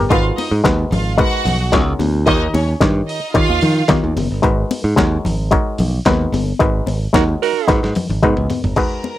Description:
disco; 111 BPM; 4/4; straight; G# dorian; A4 = 445 Hz
muted clav; accompaniment; 0.0-9.2 s; D#3 to C#5; -18 LUFS; left 2 dB; auto-wah
modern bright picked electric bass; bass; 0.0-8.7 s; F#1 to D#3; -18 LUFS; right 1 dB
bright studio violin section; second line; 0.1-3.9, 8.8-9.2 s; C#4 to A#5; -22 LUFS; right 3 dB; slapback echo
dusty soul sampler-style drum kit; drums; 0.1-8.9 s; crash cymbal, handclaps, hi-hat, kick drum, snare drum, toms; -21 LUFS; right 1 dB
congas; percussion; 0.1-9.2 s; -23 LUFS; left 4 dB
warm horn section; stabs; 7.1-7.8 s; D#4 to A#4; -18 LUFS; right 12 dB
little or no reverb; dry, close 1970s-style studio recording; -14 LUFS; side -14 dB against mid
0.0-8.8 A section
band accent 6.6-8.8; drum fill 7.7-8.8
0.1 G#m9; 2.3 D#9; 4.4 G#m9
| 0.10 0.64 1.19 1.73 | 2.27 2.81 3.35 3.89 | 4.43 4.98 5.52 6.06 | 6.60 7.14 7.69 8.23 | 8.77

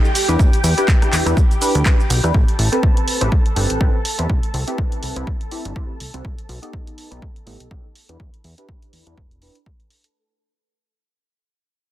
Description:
filtered disco house; 123 BPM; 4/4; swing 56% on 16ths; A4 = 438 Hz
funky polysynth comp; accompaniment; 0.0-9.6 s; B3 to B4; -24 LUFS; equal; chorus, phaser, sidechain pumping, low-pass filter
string machine, full ensemble; sustained chords; 0.0-10.2 s; G4 to A5; -27 LUFS; right 1 dB; ensemble chorus, sidechain pumping, low-pass filter
punchy analog drum machine; drums; 0.0-10.1 s; handclaps, hi-hat, rim click, shaker; -24 LUFS; right 1 dB; sidechain pumping on cymbals, sidechain pumping on perc, sidechain pumping on hats
tambourine; percussion; 0.0-10.1 s; -45 LUFS; equal
plucky analog bass; bass; 0.3-9.5 s; G1 to E2; -20 LUFS; equal; tube saturation, sidechain pumping, low-pass filter
electronic kick drum; drums; 0.4-9.8 s; -17 LUFS; equal
little or no reverb; dense, heavily limited modern master; -15 LUFS; side -14 dB against mid
0.0-10.1 A section
fade-out 0.0-10.1; filter sweep 0.0-10.1
0.1 Em7; 2.3 Am9; 6.2 Baug7; 8.0 Em7
| 0.39 0.88 1.37 1.85 | 2.34 2.83 3.32 3.81 | 4.29 4.78 5.27 5.76 | 6.25 6.73 7.22 7.71 | 8.20 8.69 9.17 9.66

